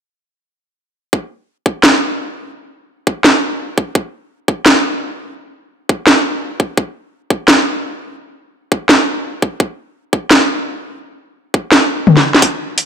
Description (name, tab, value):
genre	half-time drum and bass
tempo	170 BPM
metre	4/4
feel	swing 56% on 16ths, half-time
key	none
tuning	none
part	electronic kick drum	drums	1.1-12.5 s	none	-15 LUFS	equal	high-pass filter on kick, high-pass filter on room
part	drum and bass drum kit	drums	1.8-12.9 s	hi-hat, snare drum, toms	-10 LUFS	equal	none
room	wet echo chamber reverb, RT60 1.5 s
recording	none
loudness	-12 LUFS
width	side -8 dB against mid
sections	1.1-12.9 A section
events	kick drops out 11.7-12.4; drum fill 12.1-12.4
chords	none